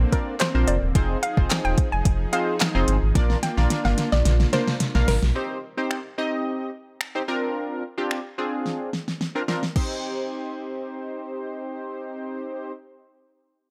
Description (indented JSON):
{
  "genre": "dance-pop",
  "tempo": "109 BPM",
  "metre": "4/4",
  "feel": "straight",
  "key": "C minor",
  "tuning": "A4 = 443 Hz",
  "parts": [
    { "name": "soft supersaw", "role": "sustained chords", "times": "0.0-5.3 s", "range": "D3 to Ab4", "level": "-34 LUFS", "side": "equal", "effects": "sidechain pumping" },
    { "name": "sub bass with octave", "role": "bass", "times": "0.0-5.3 s", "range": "Eb1 to Bb1", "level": "-24 LUFS", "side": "equal", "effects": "sidechain pumping" },
    { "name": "hollow square pluck", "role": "melody", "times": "0.1-5.2 s", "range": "Bb4 to Ab5", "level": "-31 LUFS", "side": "equal", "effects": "chorus, tape echo" },
    { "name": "funky polysynth comp", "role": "accompaniment", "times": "0.1-12.7 s", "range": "Bb3 to F5", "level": "-30 LUFS", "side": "equal", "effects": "chorus, sidechain pumping" },
    { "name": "smooth R&B drum kit", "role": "drums", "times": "0.1-9.9 s", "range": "crash cymbal, finger snaps, handclaps, hi-hat, kick drum, snare drum", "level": "-26 LUFS", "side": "equal", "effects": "overdrive" }
  ],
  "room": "little or no reverb",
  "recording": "none",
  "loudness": "-24 LUFS",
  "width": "mono",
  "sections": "0.0-5.4 A section; 5.4-9.8 B section; 9.8-12.0 C section",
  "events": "drop 0.0-5.4; drum fill 3.2-5.4, 8.7-9.8",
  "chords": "0.0 Bbadd9; 1.0 Fm7; 3.2 Bb; 5.4 Cm; 7.3 Bbadd9; 9.8 Cm"
}